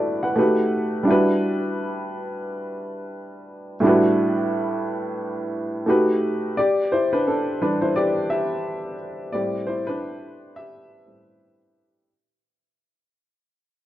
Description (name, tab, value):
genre	lo-fi hip hop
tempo	87 BPM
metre	4/4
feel	swing 58% on 16ths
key	E minor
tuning	A4 = 440 Hz
part	warm upright piano	solo	0.0-12.1 s	A2 to F#5	-20 LUFS	equal	cassette tape, low-pass filter
room	light reverb, small room reverb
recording	rough home demo mix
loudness	-20 LUFS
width	side -13 dB against mid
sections	0.0-6.6 A section; 6.6-12.1 B section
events	fade-out 6.6-12.1; upright piano solo 6.6-12.1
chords	0.4 B7b13; 1.0 Em9; 3.8 A13sus4; 5.9 B7b13; 6.6 Em7; 9.3 Am9